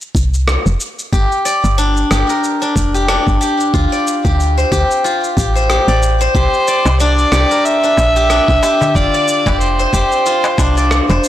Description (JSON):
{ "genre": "organic downtempo", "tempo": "92 BPM", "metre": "4/4", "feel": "swing 56% on 16ths", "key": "G dorian", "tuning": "A4 = 440 Hz", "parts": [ { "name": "electronic cabasa and rim click", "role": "drums", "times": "0.0-11.3 s", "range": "none", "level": "-22 LUFS", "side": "equal", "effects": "soft clipping on snare" }, { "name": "woody FM bass", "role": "bass", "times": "0.1-11.2 s", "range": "F1 to D2", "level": "-15 LUFS", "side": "equal", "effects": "sidechain pumping" }, { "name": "electronic kick drum", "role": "drums", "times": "0.1-10.7 s", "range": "none", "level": "-18 LUFS", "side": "equal", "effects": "none" }, { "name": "steel-string zither", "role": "arpeggios", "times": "1.1-11.3 s", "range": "D4 to D5", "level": "-15 LUFS", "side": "left 2 dB", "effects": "digital delay" }, { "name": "bright kamancheh", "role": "melody", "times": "6.3-11.2 s", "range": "C5 to E5", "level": "-15 LUFS", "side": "right 1 dB", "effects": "tape echo" }, { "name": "darbuka", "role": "percussion", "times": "6.9-11.2 s", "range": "none", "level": "-23 LUFS", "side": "left 2 dB", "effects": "none" } ], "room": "light reverb, studio ambience", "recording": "blown-out, overdriven recording, overdrive", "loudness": "-11 LUFS", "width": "side -12 dB against mid", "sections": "0.0-11.3 A section", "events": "none", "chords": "0.0 N.C.; 1.1 Gm; 3.7 Dm7; 6.3 C; 9.0 Fsus2" }